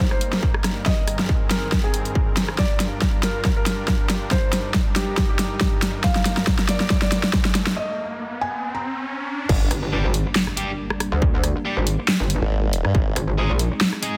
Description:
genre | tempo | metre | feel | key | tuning
heavy wobble dubstep | 139 BPM | 4/4 | swing 54% on 16ths, half-time | G phrygian | A4 = 440 Hz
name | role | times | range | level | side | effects
felt-muted upright piano | melody | 0.0-9.4 s | G4 to Bb5 | -32 LUFS | equal | dub echo
supersaw pad | sustained chords | 0.0-14.2 s | G2 to Bb4 | -34 LUFS | equal | sidechain pumping, low-pass filter
dubstep drum kit | drums | 0.0-14.1 s | crash cymbal, handclaps, hi-hat, rim click, snare drum | -25 LUFS | equal | none
electronic kick drum | drums | 0.0-13.0 s | none | -24 LUFS | equal | distortion
riser and impact | sound effects | 5.6-11.2 s | none | -34 LUFS | equal | none
formant-sweep wobble bass | bass | 9.5-9.7, 12.4-13.1 s | G1 to G2 | -24 LUFS | equal | chorus, overdrive
metallic wobble bass | bass | 9.7-13.7 s | G1 to D2 | -24 LUFS | equal | chorus, overdrive
distorted electric guitar | stabs | 9.9-14.2 s | G3 to Ab4 | -32 LUFS | equal | distortion, dub echo
room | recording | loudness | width
light reverb | dense, heavily limited modern master, faint mains hum | -22 LUFS | mono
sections
0.0-9.5 A section; 9.5-14.2 B section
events
build-up 0.0-9.5; drum fill 0.0-7.8; riser 5.6-9.5; break 7.8-9.5; drop 9.5-14.2; impact 9.5-11.2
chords
0.0 Eb/G; 0.9 Abadd9/G; 2.6 Gm7; 4.3 Cm9/G (rootless); 6.0 Eb/G; 7.8 N.C.; 9.5 Gm; 12.9 Ab

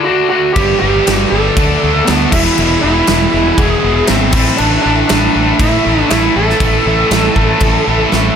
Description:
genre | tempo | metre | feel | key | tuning
hard rock | 119 BPM | 4/4 | straight | A dorian | A4 = 440 Hz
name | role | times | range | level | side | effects
lead guitar through a small cranked amp | melody | 0.0-8.1 s | B3 to A4 | -15 LUFS | right 1 dB | overdrive, slapback echo
tonewheel organ | sustained chords | 0.0-8.4 s | G#4 to D6 | -26 LUFS | right 1 dB | none
distorted electric guitar | riff | 0.0-8.4 s | E2 to D4 | -17 LUFS | left 12 dB | distortion
overdriven electric guitar | riff | 0.6-8.4 s | E2 to D4 | -18 LUFS | right 17 dB | none
fuzz fingered electric bass | bass | 0.6-8.3 s | E1 to A2 | -17 LUFS | equal | overdrive
big rock drum kit | drums | 0.6-8.2 s | crash cymbal, kick drum, snare drum | -16 LUFS | equal | none
room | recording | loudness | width
light reverb | none | -9 LUFS | side -8 dB against mid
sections
0.0-8.4 A section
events
drum fill 8.1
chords
0.0 D; 0.6 G; 1.6 D; 2.3 E; 4.3 Am

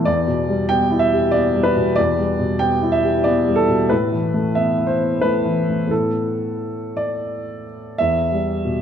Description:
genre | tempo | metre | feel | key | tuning
neoclassical minimalist piano | 83-95 BPM | 3/4 | rubato | unclear | A4 = 442 Hz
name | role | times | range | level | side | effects
dark upright piano | solo | 0.0-8.8 s | E2 to G5 | -17 LUFS | equal | none
room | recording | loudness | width
wet concert hall reverb, RT60 2.1 s | dark, warm production | -16 LUFS | side -8 dB against mid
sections
0.0-8.0 A section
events
none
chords
0.1 Em7; 3.9 Asus2; 8.0 Em

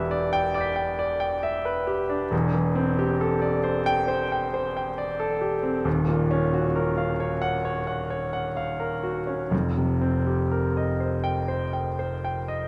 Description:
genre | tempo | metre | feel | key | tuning
classical, impressionist solo piano | 60-69 BPM | 4/4 | rubato | unclear | A4 = 438 Hz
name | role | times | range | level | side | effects
clear concert grand piano | solo | 0.0-12.7 s | Eb1 to B6 | -26 LUFS | equal | none
room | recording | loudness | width
wet recital hall reverb, RT60 1.6 s | none | -26 LUFS | mono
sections
0.0-12.7 A section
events
none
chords
0.0 Em7; 2.3 C69/E; 5.9 Ebm9; 9.5 F9sus4

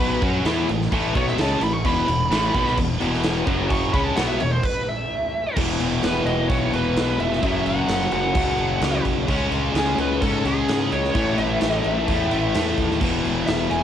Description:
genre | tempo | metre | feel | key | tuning
hard rock | 129 BPM | 4/4 | straight | unclear | A4 = 440 Hz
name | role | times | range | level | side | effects
high-gain lead guitar | melody | 0.0-13.8 s | G#4 to C#6 | -26 LUFS | right 1 dB | distortion, cassette tape, tape echo
cranked stack guitar | riff | 0.0-13.8 s | E2 to F#4 | -28 LUFS | right 1 dB | overdrive, cassette tape
heavy high-gain guitar | riff | 0.0-13.8 s | E2 to F#4 | -29 LUFS | right 10 dB | distortion, cassette tape
overdriven electric guitar | riff | 0.0-13.8 s | E2 to F#4 | -25 LUFS | left 6 dB | cassette tape
fuzz fingered electric bass | bass | 0.0-13.8 s | E1 to G#2 | -28 LUFS | right 1 dB | overdrive
huge arena drum kit | drums | 0.2-13.8 s | crash cymbal, kick drum, snare drum | -25 LUFS | right 1 dB | cassette tape
room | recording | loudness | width
moderate booth ambience, RT60 0.2 s | home recording on cassette | -19 LUFS | side -9 dB against mid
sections
0.0-5.6 A section; 5.6-13.8 B section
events
lead electric guitar solo 0.0-5.6; stop 4.6-5.6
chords
0.2 A5; 1.8 E5; 3.5 F#5; 3.9 E5; 4.6 N.C.; 5.6 E5; 7.4 F#5; 9.3 C#5; 11.2 A5; 13.0 E5

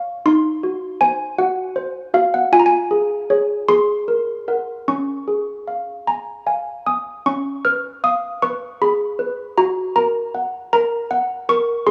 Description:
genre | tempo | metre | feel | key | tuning
classical, lullaby for handbells | 52 BPM (dotted quarters) | 6/8 | straight | Db major | A4 = 440 Hz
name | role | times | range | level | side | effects
malleted handbells | solo | 0.0-11.9 s | Db4 to F6 | -20 LUFS | equal | none
room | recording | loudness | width
moderate plate reverb, RT60 3.0 s | worn, warbling old tape, cassette tape, warbly pitch drift, small room ambience | -20 LUFS | mono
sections
0.0-7.3 A section; 7.3-11.9 B section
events
none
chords
0.3 Cdim/Eb; 2.5 Db/F; 3.7 Ab9; 4.9 Db; 7.3 Db7; 9.6 Gb

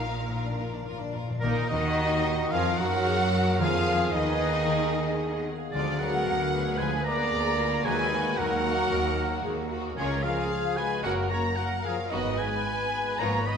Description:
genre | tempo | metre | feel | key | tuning
classical, dramatic, fast romantic movement for symphony orchestra | 112 BPM | 4/4 | straight | Eb minor | A4 = 441 Hz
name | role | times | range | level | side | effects
warm symphonic violin section | melody | 0.0-13.6 s | Bb4 to Cb6 | -34 LUFS | left 1 dB | none
rich studio violin section | second line | 0.0-13.4 s | Bb3 to D5 | -36 LUFS | left 2 dB | none
rich symphonic viola section | accompaniment | 0.0-13.6 s | F4 to Cb5 | -36 LUFS | right 2 dB | none
concert harp | arpeggios | 0.0-13.6 s | Gb2 to F5 | -35 LUFS | left 6 dB | none
rich symphonic cello section | bass | 0.0-13.6 s | Db2 to Gb3 | -35 LUFS | right 3 dB | none
rich symphonic double bass section | bass | 0.0-13.6 s | Gb1 to Gb2 | -34 LUFS | right 2 dB | none
timpani | percussion | 0.3-4.4, 7.8-8.6 s | Bb2 to Eb3 | -36 LUFS | left 1 dB | none
clear oboe | second line | 1.4-13.6 s | Bb4 to Cb6 | -33 LUFS | right 1 dB | none
mellow clarinet | second line | 1.4-13.6 s | Bb3 to Cb5 | -37 LUFS | left 2 dB | none
mellow hollow large flute ensemble | second line | 1.4-13.6 s | Bb4 to Cb6 | -36 LUFS | left 1 dB | none
clear trombone section | sustained chords | 1.4-13.4 s | Bb2 to Cb4 | -36 LUFS | right 3 dB | none
mellow French horn section | sustained chords | 1.4-13.6 s | Bb2 to Cb4 | -36 LUFS | left 2 dB | none
bright trumpet section | stabs | 1.4-13.6 s | Eb4 to Eb5 | -33 LUFS | right 1 dB | none
room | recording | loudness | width
wet recital hall reverb, RT60 1.5 s | minimal, uncompressed stereo recording | -24 LUFS | side -7 dB against mid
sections
0.0-1.4 A section; 1.4-13.6 B section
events
timpani fill 0.3-1.4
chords
0.3 Bb; 1.4 Ebm; 3.6 Fm7b5; 5.7 Ddim7; 7.8 Ebm; 10.0 Db; 11.0 Gb; 12.1 Abm7

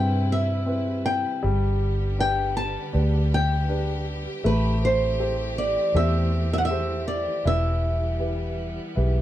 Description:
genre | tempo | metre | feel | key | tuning
acoustic folk-pop ballad | 80 BPM | 4/4 | straight | unclear | A4 = 440 Hz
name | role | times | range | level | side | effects
flamenco guitar | melody | 0.0-9.2 s | B4 to A5 | -26 LUFS | equal | plate reverb
warm baby grand piano | accompaniment | 0.0-9.2 s | C3 to C5 | -30 LUFS | left 1 dB | none
rich chamber string section | sustained chords | 0.0-9.2 s | C3 to B4 | -34 LUFS | equal | none
vintage muted fingered electric bass | bass | 0.0-9.2 s | E1 to G2 | -24 LUFS | equal | none
room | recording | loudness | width
light reverb | dark, warm production | -22 LUFS | side -13 dB against mid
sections
0.0-9.2 A section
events
none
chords
0.0 Cmaj7; 1.4 G; 4.5 Am7; 7.5 Em

